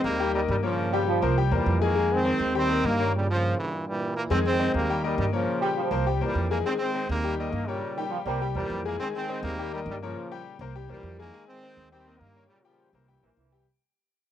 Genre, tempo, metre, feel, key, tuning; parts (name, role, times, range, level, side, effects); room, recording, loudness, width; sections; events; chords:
latin; 205 BPM; 4/4; straight; A4 = 440 Hz
brilliant trombone section; melody; 0.0-13.5 s; G2 to C4; -28 LUFS; right 1 dB; cassette tape, plate reverb
bright grand piano; accompaniment; 0.0-13.6 s; G3 to Ab5; -29 LUFS; left 7 dB; cassette tape, plate reverb
upright bass; bass; 0.0-13.6 s; Bb1 to G2; -29 LUFS; right 2 dB
mellow trombone section; second line; 0.9-1.4, 5.6-8.5, 13.2-13.6 s; Eb3 to G3; -29 LUFS; right 10 dB; cassette tape, plate reverb
moderate booth ambience, RT60 0.2 s; home recording on cassette; -24 LUFS; side -10 dB against mid
0.0-4.3 A section; 4.3-13.7 A section
stop 3.1-4.3; fade-out 4.3-13.7
0.2 Eb; 0.8 Gm7b5; 1.4 C7; 2.0 Fm7; 2.5 Eb; 3.1 Gm7b5; 3.7 Gm6; 4.3 Fm7; 4.9 Eb; 5.5 Gm7b5; 6.1 C7; 6.7 Abmaj9/Eb; 7.2 Eb; 7.8 Gdim; 8.4 C7; 9.0 Abmaj9/Eb; 9.6 Eb; 10.2 Gm7b5; 10.7 C7; 11.3 Abadd9/Eb; 11.9 Eb; 12.5 Gm7b5; 13.1 C7